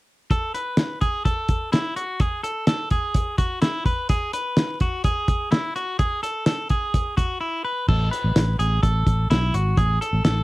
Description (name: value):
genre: jangly indie pop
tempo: 127 BPM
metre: 4/4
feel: straight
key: unclear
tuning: A4 = 440 Hz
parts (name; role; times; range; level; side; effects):
- clean electric guitar; arpeggios; 0.3-10.4 s; E4 to B4; -26 LUFS; equal; slapback echo
- cloth-damped thuddy drum kit; drums; 0.3-10.4 s; crash cymbal, hi-hat, kick drum, snare drum; -22 LUFS; equal; none
- fingered electric bass; bass; 7.9-10.4 s; G#1 to B1; -21 LUFS; equal; none
room: little or no reverb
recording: dry, close 1970s-style studio recording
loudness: -20 LUFS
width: side -20 dB against mid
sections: 0.3-7.9 A section; 7.9-10.4 B section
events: break 7.4-7.9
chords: 0.3 Asus2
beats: | 0.31 0.78 1.25 1.73 | 2.20 2.68 3.15 3.62 | 4.10 4.57 5.05 5.52 | 5.99 6.47 6.94 7.41 | 7.89 8.36 8.83 9.30 | 9.78 10.25